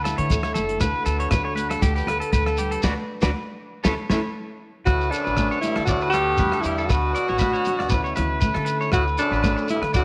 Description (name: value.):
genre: highlife guitar band.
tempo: 118 BPM.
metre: 4/4.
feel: swing 54% on 16ths.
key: D major.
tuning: A4 = 436 Hz.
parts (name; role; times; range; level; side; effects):
picked steel-string acoustic guitar; accompaniment; 0.0-10.0 s; D3 to B4; -33 LUFS; equal; none.
electric guitar at the edge of break-up; arpeggios; 0.0-10.0 s; F#4 to D5; -29 LUFS; equal; slapback echo.
upright bass; bass; 0.0-10.0 s; F#1 to D3; -29 LUFS; equal; none.
warm soul drum kit; drums; 0.1-10.0 s; hi-hat, kick drum, rim click, snare drum; -29 LUFS; equal; none.
congas; percussion; 0.1-10.0 s; none; -34 LUFS; equal; none.
shekere; percussion; 0.1-10.0 s; none; -32 LUFS; equal; none.
breathy alto saxophone; melody; 4.9-10.0 s; D4 to G4; -26 LUFS; equal; none.
trombone with straight mute; second line; 4.9-10.0 s; F#2 to B2; -32 LUFS; equal; none.
room: light reverb, studio ambience.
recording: none.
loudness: -22 LUFS.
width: mono.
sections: 0.0-4.9 A section; 4.9-10.0 B section.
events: band accent 2.8-4.9.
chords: 0.0 Aadd9/D; 0.8 D6; 1.8 Gadd9/D; 2.8 Bm/D; 3.8 Aadd9/D; 4.9 D6; 5.9 Gadd9/D; 6.9 Bm; 7.9 Aadd9/D; 8.9 D6.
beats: 0.29 | 0.80 1.31 1.82 2.32 | 2.83 3.34 3.85 4.36 | 4.86 5.37 5.88 6.39 | 6.90 7.41 7.92 8.43 | 8.93 9.44 9.95.